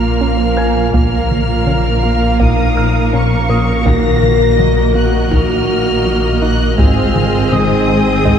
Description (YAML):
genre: cinematic, hybrid orchestral and electronic film score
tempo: 82 BPM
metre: 4/4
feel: straight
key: unclear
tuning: A4 = 440 Hz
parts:
  - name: rich studio violin section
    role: melody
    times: 0.0-8.4 s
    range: Db6 to Bb6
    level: -23 LUFS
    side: left 1 dB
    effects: none
  - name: warm symphonic violin section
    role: second line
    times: 0.0-8.4 s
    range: Ab4 to F5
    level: -22 LUFS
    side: left 3 dB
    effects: none
  - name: warm symphonic viola section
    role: accompaniment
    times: 0.0-8.4 s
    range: Bb3 to Bb4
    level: -20 LUFS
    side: right 3 dB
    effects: none
  - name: clear French horn section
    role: sustained chords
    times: 0.0-8.4 s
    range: Db4 to Bb4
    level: -20 LUFS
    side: left 5 dB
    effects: none
  - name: clear trombone section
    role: sustained chords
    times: 0.0-8.4 s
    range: Eb3 to C4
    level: -21 LUFS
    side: right 3 dB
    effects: none
  - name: smooth synth bass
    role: riff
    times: 0.0-8.4 s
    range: Ab2 to Bb3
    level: -21 LUFS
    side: left 3 dB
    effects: none
  - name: dark symphonic cello section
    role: bass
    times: 0.0-8.4 s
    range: Ab2 to Bb2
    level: -21 LUFS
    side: right 2 dB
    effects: none
  - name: saturated sub bass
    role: bass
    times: 0.0-8.4 s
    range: Ab1 to Bb1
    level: -21 LUFS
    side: equal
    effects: none
  - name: warm studio double bass section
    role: bass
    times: 0.0-8.4 s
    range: Ab1 to Bb1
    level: -21 LUFS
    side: right 1 dB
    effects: none
  - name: clear concert grand piano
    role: texture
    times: 0.0-8.4 s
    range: Ab5 to Ab6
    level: -28 LUFS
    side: right 1 dB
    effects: tape echo
  - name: woody wave-folded pluck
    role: arpeggios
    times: 0.2-8.4 s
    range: Eb3 to Bb4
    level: -24 LUFS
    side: right 3 dB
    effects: none
  - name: taiko ensemble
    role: drums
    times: 0.9-8.4 s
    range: none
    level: -17 LUFS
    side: equal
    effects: none
room: wet scoring stage reverb, RT60 1.7 s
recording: heard from further back in the room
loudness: -11 LUFS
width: side -8 dB against mid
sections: 0.0-8.4 A section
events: none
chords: 0.0 Bbm; 3.9 Ebm/Bb; 6.8 Ab